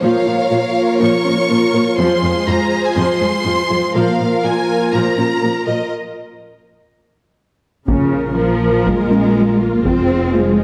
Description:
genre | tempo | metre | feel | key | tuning
cinematic, hybrid orchestral and electronic film score | 122 BPM | 4/4 | straight | Bb minor | A4 = 440 Hz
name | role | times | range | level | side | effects
rich symphonic violin section | melody | 0.0-5.9 s | Eb5 to Db6 | -24 LUFS | equal | none
rich studio violin section | second line | 0.0-5.9 s | Ab4 to Db5 | -24 LUFS | equal | none
warm symphonic viola section | accompaniment | 0.0-10.6 s | F3 to Bb4 | -23 LUFS | equal | none
hollow soft pad | sustained chords | 0.0-10.6 s | F3 to Db5 | -22 LUFS | equal | chorus
tight sequenced synth | arpeggios | 0.0-10.5 s | F3 to Bb4 | -29 LUFS | equal | none
warm symphonic cello section | bass | 0.0-10.6 s | F2 to C4 | -21 LUFS | equal | none
warm chamber double bass section | bass | 7.9-10.6 s | F1 to Bb1 | -24 LUFS | equal | none
taiko ensemble | drums | 7.9-10.3 s | none | -25 LUFS | equal | none
room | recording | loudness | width
wet scoring stage reverb, RT60 1.6 s | none | -16 LUFS | mono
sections
0.0-7.9 A section; 7.9-10.6 A section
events
break 5.9-7.9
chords
0.0 Bbm; 2.0 Fm; 4.0 Bb5; 7.9 Bbm; 9.9 Fm

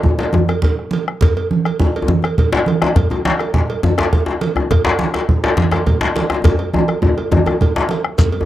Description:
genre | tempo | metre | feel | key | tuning
west african traditional, West African drum ensemble | 138 BPM (dotted quarters) | 12/8 | straight | none | none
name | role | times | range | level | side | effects
congas | percussion | 0.0-8.3 s | none | -20 LUFS | right 4 dB | none
djembe | percussion | 0.0-8.5 s | none | -18 LUFS | left 3 dB | none
bombo | percussion | 0.1-8.3 s | none | -16 LUFS | equal | none
cowbell | percussion | 0.2-8.5 s | none | -24 LUFS | right 5 dB | none
djembe | percussion | 0.3-8.5 s | none | -18 LUFS | left 2 dB | none
shekere | percussion | 8.2-8.3 s | none | -21 LUFS | left 2 dB | none
room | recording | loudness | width
little or no reverb | dry, close 1970s-style studio recording | -14 LUFS | side -13 dB against mid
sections
0.0-8.2 A section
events
drum fill 6.4-8.2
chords
none

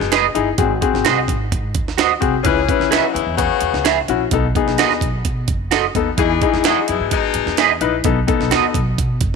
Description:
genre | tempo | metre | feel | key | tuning
uptempo 1960s-style soul | 129 BPM | 4/4 | straight | E major | A4 = 438 Hz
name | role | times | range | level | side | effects
warm horn section | second line | 0.0-7.8 s | B2 to G#4 | -21 LUFS | left 13 dB | none
upright bass | bass | 0.0-9.4 s | F#1 to B2 | -24 LUFS | equal | none
jungle sampler-style drum kit | drums | 0.0-9.3 s | hi-hat, kick drum, snare drum | -21 LUFS | right 4 dB | none
electric guitar at the edge of break-up | stabs | 0.1-8.6 s | E4 to E5 | -19 LUFS | right 12 dB | ensemble chorus
clear baby grand piano | accompaniment | 0.3-8.8 s | B3 to B4 | -19 LUFS | left 11 dB | none
room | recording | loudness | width
light reverb | 1960s-style stereo with parts hard left and right | -15 LUFS | side -5 dB against mid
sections
0.0-9.4 A section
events
none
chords
0.0 Emaj7; 0.6 G#7; 2.5 C#m7; 4.3 B7; 6.2 Emaj7; 8.0 B7

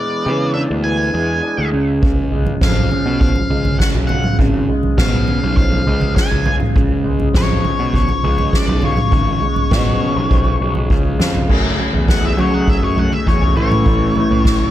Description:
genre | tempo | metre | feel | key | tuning
psychedelic rock | 101 BPM | 4/4 | straight | unclear | A4 = 440 Hz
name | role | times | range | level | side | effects
octave-fuzz lead guitar | melody | 0.0-14.7 s | C#5 to G#5 | -22 LUFS | left 3 dB | distortion, analog delay
electric guitar through a small old amp | riff | 0.0-14.7 s | E2 to G#4 | -20 LUFS | equal | rotary speaker
fuzz picked electric bass | bass | 0.3-14.6 s | G#1 to F#3 | -21 LUFS | equal | overdrive
soft-mallet drum kit | drums | 2.0-14.7 s | crash cymbal, kick drum, snare drum, toms | -16 LUFS | equal | none
congas | percussion | 2.5-14.3 s | none | -28 LUFS | right 4 dB | none
room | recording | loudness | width
small room ambience | none | -13 LUFS | side -13 dB against mid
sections
0.0-11.5 A section; 11.5-14.7 B section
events
drum fill 11.2; lead electric guitar solo 11.5-14.7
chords
0.0 E7; 1.7 C#; 11.5 F#madd9; 13.6 A

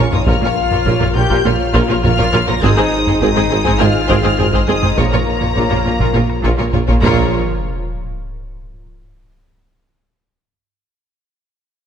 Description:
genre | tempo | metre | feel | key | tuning
cinematic, hybrid orchestral and electronic film score | 102 BPM | 4/4 | straight | Bb minor | A4 = 440 Hz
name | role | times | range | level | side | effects
rich symphonic violin section | melody | 0.0-7.4 s | Bb5 to Bb6 | -23 LUFS | left 2 dB | none
warm symphonic violin section | second line | 0.0-7.4 s | Ab4 to Db5 | -23 LUFS | left 4 dB | none
rich symphonic viola section | accompaniment | 0.0-7.4 s | Bb3 to Ab4 | -21 LUFS | right 1 dB | none
warm French horn section | sustained chords | 0.0-7.3 s | Bb3 to Bb4 | -21 LUFS | left 4 dB | none
warm analog pad | sustained chords | 0.0-7.4 s | F3 to Db5 | -24 LUFS | equal | chorus
punchy sub bass | bass | 0.0-7.4 s | Ab1 to Bb1 | -24 LUFS | equal | none
warm symphonic cello section | bass | 0.0-7.4 s | Ab2 to Bb2 | -21 LUFS | right 3 dB | none
warm symphonic double bass section | bass | 0.0-7.4 s | Ab1 to Bb1 | -22 LUFS | right 4 dB | none
warm tuba | bass | 0.0-7.3 s | Ab1 to Bb1 | -23 LUFS | right 4 dB | none
taiko ensemble | drums | 0.1-8.2 s | none | -20 LUFS | equal | none
sub drop | sound effects | 7.0-9.4 s | none | -24 LUFS | equal | none
room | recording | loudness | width
wet scoring stage reverb, RT60 1.7 s | none | -12 LUFS | side -8 dB against mid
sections
0.0-7.3 A section; 7.3-9.7 B section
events
impact 7.3-9.7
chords
0.0 Bbm; 2.6 Ab; 5.0 Bbm; 7.3 N.C.

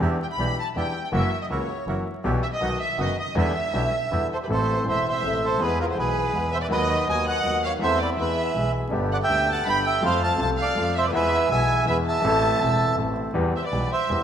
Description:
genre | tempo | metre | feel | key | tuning
tango | 162 BPM | 3/4 | rubato | E minor, A harmonic minor from 4.5 s | A4 = 440 Hz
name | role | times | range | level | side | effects
clear baby grand piano | accompaniment | 0.0-14.2 s | E1 to A4 | -26 LUFS | left 2 dB | none
bandoneon | stabs | 0.0-13.3 s | A#3 to A4 | -35 LUFS | right 4 dB | none
clear double bass | bass | 0.0-14.2 s | E1 to F2 | -29 LUFS | equal | none
bandoneon | melody | 0.2-14.2 s | F4 to B5 | -25 LUFS | right 3 dB | none
warm studio violin section | second line | 0.2-14.2 s | Bb4 to B5 | -29 LUFS | left 2 dB | none
room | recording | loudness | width
moderate concert hall reverb, RT60 1.7 s | minimal, uncompressed stereo recording, vinyl crackle | -21 LUFS | side -9 dB against mid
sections
0.0-4.5 A section; 4.5-13.4 B section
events
none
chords
0.0 Em7; 1.1 F#7; 2.2 Em/B; 2.6 B; 3.4 Em7; 4.5 Am; 5.6 E; 6.7 B/D#; 7.8 Am/E; 8.2 E; 8.9 G; 10.0 F; 11.1 E; 12.2 Am; 13.4 Em

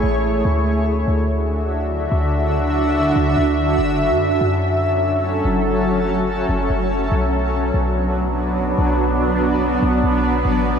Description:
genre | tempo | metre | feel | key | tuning
hip hop | 144 BPM | 4/4 | half-time | B dorian | A4 = 440 Hz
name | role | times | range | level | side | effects
granular cloud pad | sustained chords | 0.0-10.8 s | D3 to E5 | -18 LUFS | equal | built-in reverb
clean 808-style bass | bass | 0.0-10.8 s | F#1 to F#2 | -21 LUFS | equal | none
room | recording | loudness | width
moderate huge ambient reverb, RT60 8.7 s | none | -16 LUFS | side -7 dB against mid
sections
0.0-7.1 A section; 7.1-10.8 B section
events
none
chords
0.5 Dadd9; 3.8 F#m7; 7.1 Bm

